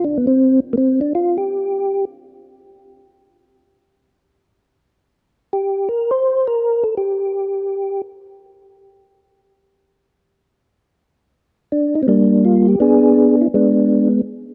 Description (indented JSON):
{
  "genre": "jazz",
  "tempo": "164 BPM",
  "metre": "4/4",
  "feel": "swing 64% on 8ths",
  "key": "unclear",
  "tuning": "A4 = 440 Hz",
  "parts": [
    { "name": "percussive tonewheel organ", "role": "solo", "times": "0.0-2.0, 5.5-8.0, 11.7-14.2 s", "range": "G3 to C5", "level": "-16 LUFS", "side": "equal", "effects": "slow rotary speaker, chorus vibrato" }
  ],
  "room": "light reverb, digital ambience",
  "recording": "dry, close 1970s-style studio recording",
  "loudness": "-17 LUFS",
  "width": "mono",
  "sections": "0.0-11.3 A section; 11.3-14.5 B section",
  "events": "none",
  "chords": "0.0 N.C.; 11.3 Gm7; 12.8 G#dim",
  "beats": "0.02 0.38 0.75 | 1.11 1.48 1.84 2.20 | 2.57 2.93 3.30 3.66 | 4.03 4.39 4.76 5.12 | 5.49 5.85 6.22 6.58 | 6.95 7.31 7.68 8.04 | 8.41 8.77 9.14 9.50 | 9.87 10.23 10.60 10.96 | 11.32 11.69 12.05 12.42 | 12.78 13.15 13.51 13.87"
}